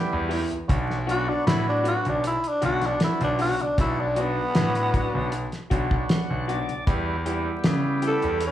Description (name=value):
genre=straight-eighth soul blues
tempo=78 BPM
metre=4/4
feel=straight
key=B minor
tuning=A4 = 440 Hz
part: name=overdriven tonewheel organ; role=accompaniment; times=0.0-8.4 s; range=F#3 to F#5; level=-30 LUFS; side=right 1 dB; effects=slow rotary speaker
part: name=bright concert grand piano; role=bass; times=0.1-8.5 s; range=B1 to C#3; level=-28 LUFS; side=equal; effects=none
part: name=electric guitar through a small old amp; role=stabs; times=0.3-8.3 s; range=E3 to G4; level=-32 LUFS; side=left 2 dB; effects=none
part: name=cloth-damped thuddy drum kit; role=drums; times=0.3-8.5 s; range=hi-hat, kick drum, snare drum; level=-26 LUFS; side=equal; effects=none
part: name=growling tenor saxophone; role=melody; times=1.1-8.5 s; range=B3 to A4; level=-25 LUFS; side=left 1 dB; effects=none
room=moderate large studio reverb, RT60 0.8 s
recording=band playing live in one room, vinyl crackle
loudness=-22 LUFS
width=side -12 dB against mid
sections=0.0-8.5 A section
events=tonewheel organ fill 5.7-6.9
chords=0.0 Em; 0.7 Bm; 6.9 Em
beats=| 0.70 1.47 2.24 3.01 | 3.79 4.56 5.33 6.10 | 6.88 7.65 8.42